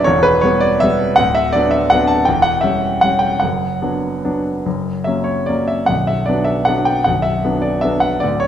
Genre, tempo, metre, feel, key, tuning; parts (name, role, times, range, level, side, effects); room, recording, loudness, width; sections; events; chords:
classical, piano waltz; 139-172 BPM; 3/4; rubato; B minor; A4 = 440 Hz
clear concert grand piano; solo; 0.0-8.5 s; B0 to A5; -14 LUFS; equal
wet recital hall reverb, RT60 1.5 s; -14 LUFS; side -10 dB against mid
0.0-8.5 A section
0.0 Em; 1.2 Bm/D; 2.3 C#dim/E; 3.4 Bm/F#; 4.7 F#; 5.9 Bm